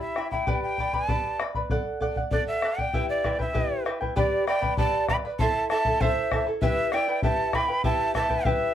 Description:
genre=andean folk, Andean ensemble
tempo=98 BPM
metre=2/4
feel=straight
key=E minor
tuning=A4 = 440 Hz
part: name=breathy bright quena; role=melody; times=0.0-8.7 s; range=D5 to B5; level=-27 LUFS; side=right 1 dB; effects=none
part: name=charango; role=accompaniment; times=0.0-8.7 s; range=E4 to B5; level=-29 LUFS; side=equal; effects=none
part: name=bombo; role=percussion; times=0.2-8.6 s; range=none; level=-28 LUFS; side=left 2 dB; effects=none
part: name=bright reedy pan flute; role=second line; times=4.2-8.7 s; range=G4 to G5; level=-30 LUFS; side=right 4 dB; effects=none
room=moderate small room reverb, RT60 0.5 s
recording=dark, warm production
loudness=-23 LUFS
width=side -10 dB against mid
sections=0.0-4.2 A section; 4.2-8.7 B section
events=none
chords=0.5 G; 1.7 D; 2.9 Em; 4.2 G; 5.4 Am; 6.6 Em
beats=| 0.47 1.09 | 1.71 2.32 | 2.94 3.55 | 4.17 4.78 | 5.39 6.01 | 6.62 7.23 | 7.84 8.46

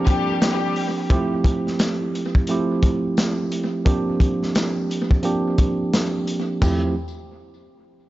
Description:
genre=hip hop, boom-bap hip-hop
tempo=87 BPM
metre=4/4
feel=swing 62% on 16ths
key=F major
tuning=A4 = 442 Hz
part: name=tine electric piano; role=accompaniment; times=0.0-6.9 s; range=F3 to G4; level=-22 LUFS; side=right 2 dB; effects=high-pass filter, low-pass filter
part: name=warm studio string section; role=stabs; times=0.1-0.6 s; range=G3 to G4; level=-27 LUFS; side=left 6 dB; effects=high-pass filter, low-pass filter, analog delay
part: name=crunchy breakbeat drum kit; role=drums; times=0.1-6.8 s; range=crash cymbal, hi-hat, kick drum, snare drum, toms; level=-21 LUFS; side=equal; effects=analog delay
part: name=tambourine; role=percussion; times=0.4-6.9 s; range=none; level=-43 LUFS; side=left 6 dB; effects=none
room=light reverb, studio ambience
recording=echo-heavy mix, nothing above 7.7 kHz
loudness=-19 LUFS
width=side -16 dB against mid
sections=0.0-1.1 A section; 1.1-6.6 B section; 6.6-8.1 C section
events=filter sweep on tine electric piano 1.1-6.6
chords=0.0 Bb69; 1.1 Fmaj9; 3.9 Bb69; 6.6 Fmaj9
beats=0.41 | 1.10 1.79 2.48 3.17 | 3.86 4.55 5.24 5.93 | 6.62

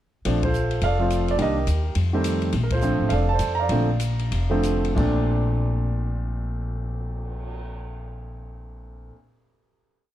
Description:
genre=jazz piano trio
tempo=179-211 BPM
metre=4/4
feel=swing 62% on 8ths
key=Bb major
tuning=A4 = 440 Hz
part: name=open jazz drum kit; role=drums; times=0.2-7.6 s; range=crash cymbal, cymbal swell, hi-hat, kick drum, ride cymbal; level=-34 LUFS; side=left 2 dB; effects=none
part: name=warm grand piano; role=melody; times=0.3-9.1 s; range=Bb2 to Bb5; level=-25 LUFS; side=right 2 dB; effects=none
part: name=upright bass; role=bass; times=0.3-9.1 s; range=F1 to F2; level=-24 LUFS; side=equal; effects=none
room=light reverb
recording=dark, warm production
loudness=-21 LUFS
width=side -12 dB against mid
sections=0.3-5.0 A section; 5.0-7.6 final chord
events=band accent 0.4, 2.7; slowing down 2.5-5.0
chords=0.3 Bbmaj9; 1.4 Cm7; 2.0 F7; 2.5 Bbmaj9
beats=| 0.25 0.54 0.82 1.11 | 1.39 1.68 1.96 2.25 | 2.53 2.82 3.11 3.40 | 3.70 4.00 4.31 4.63 | 4.96 5.29 5.63 5.96 | 6.30 6.63 6.96 7.30

